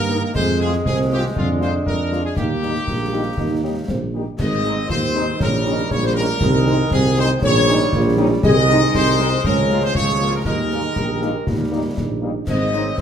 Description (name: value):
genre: military-style march for wind band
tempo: 119 BPM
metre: 2/4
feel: straight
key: Ab major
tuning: A4 = 439 Hz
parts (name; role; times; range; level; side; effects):
- bright trumpet section; melody; 0.0-13.0 s; F4 to Eb5; -24 LUFS; equal; none
- mellow euphonium; second line; 0.0-13.0 s; Ab3 to Ab4; -25 LUFS; right 2 dB; none
- clear trombone section; sustained chords; 0.0-13.0 s; C3 to C4; -28 LUFS; right 2 dB; none
- dark tuba; bass; 0.0-13.0 s; Ab1 to G2; -20 LUFS; right 1 dB; none
- mellow French horn section; accompaniment; 0.1-12.8 s; G3 to Bb4; -27 LUFS; left 3 dB; none
- concert snare drum, clash cymbals and concert bass drum; drums; 0.1-13.0 s; none; -25 LUFS; left 2 dB; none
- large flute ensemble; second line; 4.4-13.0 s; Ab4 to Eb5; -26 LUFS; left 3 dB; none
room: wet large studio reverb, RT60 1.0 s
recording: heard from further back in the room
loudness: -16 LUFS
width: side -8 dB against mid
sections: 0.0-4.4 A section; 4.4-13.0 B section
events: none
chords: 0.3 Fm; 1.4 Fm6; 2.4 Eb; 4.4 Ab; 5.4 Eb7/Bb; 6.4 Ab/C; 7.4 Eb7/Bb; 8.4 Ab/C; 9.4 Bbm7/Db; 10.5 Ebsus4; 11.5 Eb; 12.5 Ab